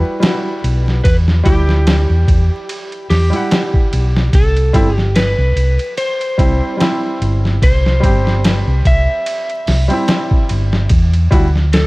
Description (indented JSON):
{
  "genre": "trip hop",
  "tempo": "73 BPM",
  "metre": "4/4",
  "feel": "swing 56% on 16ths",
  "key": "unclear",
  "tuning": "A4 = 441 Hz",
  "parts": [
    { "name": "electric slide guitar", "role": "melody", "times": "0.0-11.9 s", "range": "G4 to E5", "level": "-21 LUFS", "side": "equal", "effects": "tape echo" },
    { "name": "clear upright piano", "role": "accompaniment", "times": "0.0-11.5 s", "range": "G3 to F#5", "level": "-21 LUFS", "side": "equal", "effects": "harmonic tremolo, tape echo" },
    { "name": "boom bap sampler-style drum kit", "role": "drums", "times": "0.2-11.9 s", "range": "hi-hat, kick drum, ride cymbal, snare drum", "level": "-16 LUFS", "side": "equal", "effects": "small room ambience" },
    { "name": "hollow-body short-scale fingered electric bass", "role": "bass", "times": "0.6-11.9 s", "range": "G1 to E2", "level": "-13 LUFS", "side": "equal", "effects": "none" }
  ],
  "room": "little or no reverb",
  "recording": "dark, warm production, vinyl crackle",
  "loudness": "-12 LUFS",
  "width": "side -22 dB against mid",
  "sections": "0.0-11.9 A section",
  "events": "none",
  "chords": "0.0 Emadd9; 4.3 C; 10.9 Emadd9",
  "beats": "0.22 | 1.04 1.86 2.69 3.51 | 4.33 5.15 5.97 6.80 | 7.62 8.44 9.26 10.08 | 10.90 11.73"
}